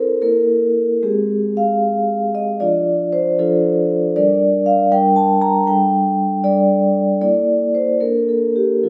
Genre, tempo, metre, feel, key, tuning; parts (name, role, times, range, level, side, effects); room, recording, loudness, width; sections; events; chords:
classical, contemporary piece for solo vibraphone; 77 BPM (dotted quarters); 6/8; rubato; A4 = 440 Hz
vibraphone with soft mallets; solo; 0.0-8.9 s; F3 to Bb5; -16 LUFS; equal
wet stone room reverb, RT60 1.2 s; -17 LUFS; mono
0.0-8.9 A section
0.2 A5; 1.0 Abmaj7; 2.6 F6; 4.2 Gm; 5.7 Gsus2; 7.2 Bbmaj7#11; 8.0 Bbmaj7